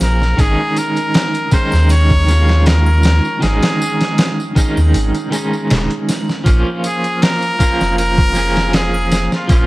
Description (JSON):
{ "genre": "trip hop", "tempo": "79 BPM", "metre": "4/4", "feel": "swing 53% on 16ths", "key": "unclear", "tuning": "A4 = 440 Hz", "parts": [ { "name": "trumpet with straight mute", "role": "melody", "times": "0.0-9.7 s", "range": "F4 to Db5", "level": "-19 LUFS", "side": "equal", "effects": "dub echo" }, { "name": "electric guitar at the edge of break-up", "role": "accompaniment", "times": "0.0-9.7 s", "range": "Eb3 to Ab4", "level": "-18 LUFS", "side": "right 1 dB", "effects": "tremolo" }, { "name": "soft dub sub bass", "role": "bass", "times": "0.0-9.7 s", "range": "Eb1 to Eb2", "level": "-14 LUFS", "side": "equal", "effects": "none" }, { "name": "dusty soul sampler-style drum kit", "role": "drums", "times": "0.0-9.7 s", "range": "hi-hat, kick drum, snare drum", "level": "-16 LUFS", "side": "equal", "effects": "none" }, { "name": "triangle and tambourine", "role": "percussion", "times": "0.0-9.7 s", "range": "none", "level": "-32 LUFS", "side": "right 1 dB", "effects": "none" } ], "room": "light reverb, digital ambience", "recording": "vinyl crackle", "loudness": "-12 LUFS", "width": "side -19 dB against mid", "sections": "0.0-9.7 A section", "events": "none", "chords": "0.4 Absus4; 6.5 Bbm" }